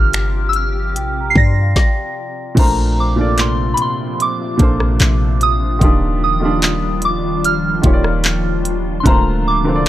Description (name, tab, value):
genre	contemporary R&B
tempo	74 BPM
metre	4/4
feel	straight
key	Bb major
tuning	A4 = 439 Hz
part	soft synth bell	melody	0.0-9.8 s	Bb5 to C7	-20 LUFS	right 1 dB	chorus, phaser, analog delay
part	warm baby grand piano	accompaniment	0.0-9.9 s	Bb2 to D5	-20 LUFS	right 2 dB	none
part	glassy FM pad	sustained chords	0.0-9.9 s	C3 to G4	-24 LUFS	left 2 dB	ensemble chorus, built-in reverb
part	clean 808-style bass	bass	0.0-9.9 s	D1 to G2	-18 LUFS	equal	none
part	large celesta	texture	0.0-6.0 s	C5 to C6	-31 LUFS	left 2 dB	analog delay
part	trap drum kit	drums	0.1-9.9 s	crash cymbal, finger snaps, handclaps, hi-hat, kick drum, rim click, snare drum	-15 LUFS	equal	none
room	little or no reverb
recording	dry, gritty hardware recording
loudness	-13 LUFS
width	side -14 dB against mid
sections	0.0-2.6 A section; 2.6-9.9 B section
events	stop 1.8-2.6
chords	0.0 Gm7; 2.6 Bbmaj9; 5.8 Ebmaj9; 9.1 Bbmaj9/D